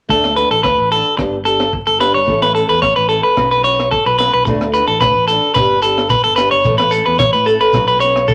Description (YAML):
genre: highlife guitar band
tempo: 110 BPM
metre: 4/4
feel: straight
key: D major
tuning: A4 = 440 Hz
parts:
  - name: picked old ladder-braced acoustic guitar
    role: accompaniment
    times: 0.1-8.2 s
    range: E3 to A4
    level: -23 LUFS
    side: equal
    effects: none
  - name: electric guitar at the edge of break-up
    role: arpeggios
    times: 0.1-8.3 s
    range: A4 to C#5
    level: -15 LUFS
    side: equal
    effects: spring reverb
  - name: fingered electric bass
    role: bass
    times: 0.1-8.3 s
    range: G1 to A2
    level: -27 LUFS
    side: equal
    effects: none
  - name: crunchy breakbeat drum kit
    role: drums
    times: 0.1-8.3 s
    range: hi-hat, kick drum, rim click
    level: -26 LUFS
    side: equal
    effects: none
  - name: shekere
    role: percussion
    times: 4.5-8.3 s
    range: none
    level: -23 LUFS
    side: equal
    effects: none
room: moderate small room reverb, RT60 0.5 s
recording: vinyl crackle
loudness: -14 LUFS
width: mono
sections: 0.1-8.3 A section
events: none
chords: 0.1 D; 1.2 G; 2.3 A; 3.4 Bsus2; 4.5 D; 5.6 G; 6.7 A; 7.7 Bsus2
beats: | 0.09 0.64 1.19 1.73 | 2.28 2.83 3.38 3.92 | 4.47 5.02 5.56 6.11 | 6.66 7.20 7.75 8.29